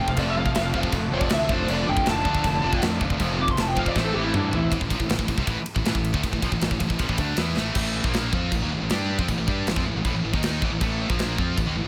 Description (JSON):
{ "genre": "heavy metal", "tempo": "158 BPM", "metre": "4/4", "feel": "straight", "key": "A minor", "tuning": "A4 = 440 Hz", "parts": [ { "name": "bluesy overdriven lead guitar", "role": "melody", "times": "0.0-4.7 s", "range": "D4 to D6", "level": "-30 LUFS", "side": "equal", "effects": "distortion, digital delay" }, { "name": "warm symphonic string section", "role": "sustained chords", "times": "0.0-4.7 s", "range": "C4 to A5", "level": "-40 LUFS", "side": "equal", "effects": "none" }, { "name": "crunchy overdriven guitar", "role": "riff", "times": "0.0-4.7 s", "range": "A2 to F4", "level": "-32 LUFS", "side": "equal", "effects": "none" }, { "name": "heavy high-gain guitar", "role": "riff", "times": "0.0-11.9 s", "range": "F2 to G4", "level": "-32 LUFS", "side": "equal", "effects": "distortion" }, { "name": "scooped high-gain guitar", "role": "riff", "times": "0.0-11.9 s", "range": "F2 to G4", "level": "-32 LUFS", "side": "equal", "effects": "distortion" }, { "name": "fuzz fingered electric bass", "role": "bass", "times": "0.0-11.9 s", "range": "F1 to G2", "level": "-31 LUFS", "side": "equal", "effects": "overdrive" }, { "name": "tight metal drum kit", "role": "drums", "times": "0.1-11.7 s", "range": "china cymbal, crash cymbal, kick drum, ride cymbal, snare drum, toms", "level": "-29 LUFS", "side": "equal", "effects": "none" } ], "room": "light reverb", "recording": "none", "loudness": "-24 LUFS", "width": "mono", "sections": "0.0-4.7 A section; 4.7-7.8 B section; 7.8-11.9 C section", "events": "lead electric guitar solo 0.0-4.7; drum fill 4.0-4.7, 7.6", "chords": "0.0 F; 1.5 Dm/F; 3.2 F; 4.0 Am; 4.7 A5; 7.8 Am" }